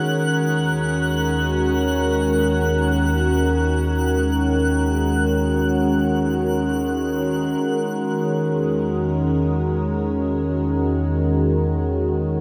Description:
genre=ambient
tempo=free time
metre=none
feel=none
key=E lydian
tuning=A4 = 441 Hz
part: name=evolving wavetable pad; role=sustained chords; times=0.0-12.4 s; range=D#3 to A#4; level=-22 LUFS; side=equal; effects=chorus, built-in reverb
part: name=round analog bass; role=bass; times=0.0-12.4 s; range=D#2 to E2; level=-27 LUFS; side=equal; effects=none
part: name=twinkling granular texture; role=texture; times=0.0-7.6 s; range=F#6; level=-31 LUFS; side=equal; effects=built-in reverb
room=wet lush hall reverb, RT60 3.1 s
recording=none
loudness=-21 LUFS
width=mono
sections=0.0-7.6 A section; 7.6-12.4 B section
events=none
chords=0.0 D#m7; 7.6 E6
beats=free time

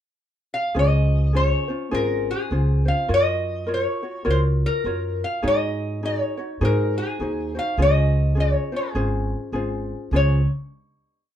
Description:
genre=Hawaiian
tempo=102 BPM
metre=4/4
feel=swing 60% on 8ths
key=Db major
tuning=A4 = 441 Hz
part: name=lap resonator guitar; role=melody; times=0.5-10.5 s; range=Ab4 to F5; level=-24 LUFS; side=left 1 dB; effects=none
part: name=ukulele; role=accompaniment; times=0.7-10.4 s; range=Db4 to Db5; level=-27 LUFS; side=left 1 dB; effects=none
part: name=upright bass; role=bass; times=0.8-10.4 s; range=Ab1 to Ab2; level=-22 LUFS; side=equal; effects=none
room=moderate small room reverb, RT60 0.5 s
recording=dark, warm production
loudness=-20 LUFS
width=side -10 dB against mid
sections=0.0-0.8 pickup bar; 0.8-10.1 A section; 10.1-11.4 final chord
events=none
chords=0.0 N.C.; 0.8 Dbmaj7; 3.1 Gbmaj7; 5.4 Ab7sus4; 6.6 Ab7; 7.8 Dbmaj7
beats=0.17 | 0.75 1.34 1.92 2.51 | 3.09 3.68 4.26 4.84 | 5.43 6.01 6.60 7.18 | 7.77 8.36 8.95 9.53 | 10.12

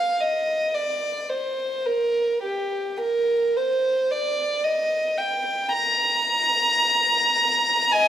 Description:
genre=classical, free, expressive piece for unaccompanied violin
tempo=52-56 BPM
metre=4/4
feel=rubato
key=unclear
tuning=A4 = 442 Hz
part: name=dark violin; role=solo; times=0.0-8.1 s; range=G4 to Bb5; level=-20 LUFS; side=equal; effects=none
room=moderate scoring stage reverb, RT60 2.0 s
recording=minimal, uncompressed stereo recording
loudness=-20 LUFS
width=side -10 dB against mid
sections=0.0-8.1 A section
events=none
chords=none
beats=0.20 1.30 2.44 | 3.58 4.65 5.74 6.84 | 7.94

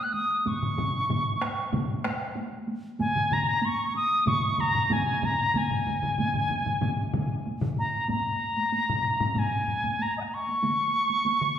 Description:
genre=japanese traditional, taiko drum ensemble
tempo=94 BPM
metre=4/4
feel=straight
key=Ab suspended pentatonic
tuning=A4 = 440 Hz
part: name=bright reedy wooden piccolo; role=melody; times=0.0-11.6 s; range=Eb5 to Gb6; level=-26 LUFS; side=equal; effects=none
part: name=taiko ensemble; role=percussion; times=0.1-11.4 s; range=none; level=-34 LUFS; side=right 2 dB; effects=none
part: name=solo taiko drums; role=percussion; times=0.5-10.0 s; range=none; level=-31 LUFS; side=left 2 dB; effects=none
part: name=taiko ensemble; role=percussion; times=0.5-11.6 s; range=none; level=-34 LUFS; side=right 2 dB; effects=none
room=wet recital hall reverb, RT60 1.6 s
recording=recorded in a church or concert hall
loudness=-24 LUFS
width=side -9 dB against mid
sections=0.0-8.1 A section; 8.1-11.6 B section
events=none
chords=none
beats=| 0.46 1.10 1.73 2.37 | 3.01 3.64 4.28 4.92 | 5.55 6.19 6.82 7.46 | 8.09 8.73 9.36 10.00 | 10.63 11.27

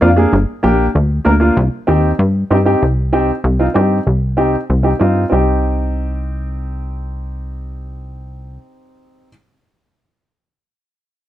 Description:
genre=latin, cumbia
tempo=192 BPM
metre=4/4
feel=straight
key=C minor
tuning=A4 = 439 Hz
part: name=warm upright piano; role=accompaniment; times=0.0-9.3 s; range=Bb3 to F5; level=-16 LUFS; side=equal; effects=none
part: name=plucky analog bass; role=bass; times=0.0-8.6 s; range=G1 to G2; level=-16 LUFS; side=equal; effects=none
room=light reverb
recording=none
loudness=-13 LUFS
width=side -13 dB against mid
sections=0.0-2.8 A section; 2.8-5.3 B section; 5.3-7.8 C section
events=upright piano fill 0.0-0.3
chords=0.3 Gm; 1.6 Cm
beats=0.02 | 0.33 0.64 0.95 1.26 | 1.57 1.89 2.20 2.51 | 2.82 3.13 3.44 3.76 | 4.07 4.38 4.70 5.01 | 5.32 5.63 5.95 6.26 | 6.57 6.89 7.20 7.51

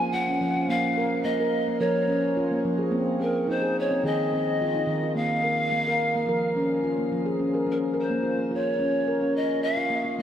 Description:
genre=world meditative, meditative tuned percussion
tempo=107 BPM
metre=4/4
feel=straight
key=Bb minor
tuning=A4 = 441 Hz
part: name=breathy pan flute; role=melody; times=0.0-10.2 s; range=Bb4 to Ab5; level=-27 LUFS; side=left 1 dB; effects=shimmer reverb, dub echo
part: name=handpan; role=arpeggios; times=0.0-10.2 s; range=Eb3 to Bb4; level=-25 LUFS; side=equal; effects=shimmer reverb, dub echo
room=wet spring reverb, RT60 1.3 s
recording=echo-heavy mix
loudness=-23 LUFS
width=side -10 dB against mid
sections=0.0-7.4 A section; 7.4-10.2 B section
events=none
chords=0.0 Bbm; 2.9 Ab/Bb; 5.2 Bbm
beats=0.13 | 0.69 1.25 1.80 2.36 | 2.92 3.48 4.04 4.60 | 5.16 5.71 6.27 6.83 | 7.39 7.95 8.51 9.07 | 9.63 10.19

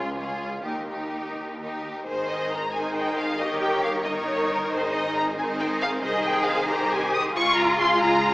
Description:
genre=quick classical-period movement for string orchestra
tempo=90 BPM (dotted quarters)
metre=6/8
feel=rubato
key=Ab major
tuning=A4 = 440 Hz
part: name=warm symphonic violin section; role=melody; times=0.0-8.3 s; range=Bb4 to Eb6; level=-26 LUFS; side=left 1 dB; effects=none
part: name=clear symphonic violin section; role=second line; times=0.0-8.3 s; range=F4 to Db5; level=-30 LUFS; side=left 1 dB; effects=none
part: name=clear symphonic viola section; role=accompaniment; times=0.0-8.3 s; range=Eb3 to F4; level=-29 LUFS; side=equal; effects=none
part: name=rich chamber double bass section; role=bass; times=0.0-8.3 s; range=G1 to Db3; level=-39 LUFS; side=right 1 dB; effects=none
part: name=warm symphonic cello section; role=bass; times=0.0-8.3 s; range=Db2 to Ab4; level=-28 LUFS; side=equal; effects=none
room=wet concert hall reverb, RT60 1.9 s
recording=small speaker sound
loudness=-22 LUFS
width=side -20 dB against mid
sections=0.0-2.1 A section; 2.1-8.3 B section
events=none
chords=0.0 Db; 0.6 Eb; 2.1 Ab; 3.4 Eb7/G; 4.7 Ab; 6.0 Ab/C; 7.4 Db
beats=| 0.64 1.36 | 2.07 2.75 | 3.42 4.08 | 4.74 5.39 | 6.05 6.70 | 7.36 8.03

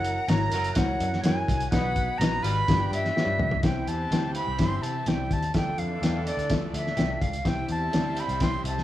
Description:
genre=uptempo 1960s-style soul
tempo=126 BPM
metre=4/4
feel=straight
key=C major from 3.6 s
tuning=A4 = 438 Hz
part: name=silver concert flute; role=melody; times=0.0-8.8 s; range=D5 to C6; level=-29 LUFS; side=right 1 dB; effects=plate reverb
part: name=glockenspiel with rubber mallets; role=second line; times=0.0-3.2 s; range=F#6 to B6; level=-42 LUFS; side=right 4 dB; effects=none
part: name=warm chamber string section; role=second line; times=0.0-8.8 s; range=A3 to B5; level=-40 LUFS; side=right 1 dB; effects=plate reverb
part: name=clear upright piano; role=accompaniment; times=0.0-8.8 s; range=G2 to G5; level=-34 LUFS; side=left 2 dB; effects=plate reverb
part: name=vintage muted picked electric bass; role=bass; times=0.0-8.8 s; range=F#1 to C3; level=-30 LUFS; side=left 1 dB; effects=none
part: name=cloth-damped thuddy drum kit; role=drums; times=0.0-8.8 s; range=hi-hat, kick drum, snare drum, toms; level=-27 LUFS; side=equal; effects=none
part: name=warm horn section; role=second line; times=0.5-8.8 s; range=D3 to C5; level=-38 LUFS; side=right 1 dB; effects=plate reverb
room=light reverb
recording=studio ambience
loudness=-23 LUFS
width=side -13 dB against mid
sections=0.0-3.6 A section; 3.6-8.8 B section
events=drum fill 3.2-3.6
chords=0.0 F#7; 1.7 B; 2.7 G7; 3.6 C; 5.5 Dmadd9; 7.5 C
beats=0.29 0.77 1.25 | 1.72 2.20 2.68 3.16 | 3.63 4.11 4.59 5.07 | 5.55 6.02 6.50 6.98 | 7.46 7.94 8.41

